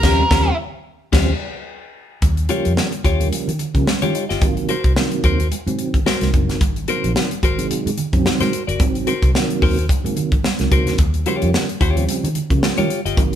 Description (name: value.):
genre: funk.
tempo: 110 BPM.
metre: 4/4.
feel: swing 56% on 16ths.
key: unclear.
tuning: A4 = 440 Hz.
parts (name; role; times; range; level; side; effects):
octave-fuzz lead guitar; melody; 0.0-0.6 s; Bb4; -19 LUFS; right 2 dB; distortion.
clean electric guitar; accompaniment; 0.0-13.2 s; Db4 to Eb5; -23 LUFS; left 5 dB; none.
mellow tonewheel organ; stabs; 0.0-13.4 s; Cb3 to F4; -24 LUFS; right 4 dB; overdrive, fast rotary speaker.
vintage muted fingered electric bass; bass; 0.0-13.4 s; Gb1 to Eb3; -21 LUFS; equal; none.
crisp fusion drum kit; drums; 0.0-13.4 s; crash cymbal, hi-hat, kick drum, snare drum; -19 LUFS; equal; none.
congas; percussion; 2.2-13.3 s; none; -28 LUFS; right 8 dB; none.
room: light reverb.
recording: band playing live in one room.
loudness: -16 LUFS.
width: side -10 dB against mid.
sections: 0.0-2.2 A section; 2.2-13.4 B section.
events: band accent 0.0-2.2.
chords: 0.0 Eb13; 2.2 Eb9; 4.4 Ab9; 11.0 Eb9.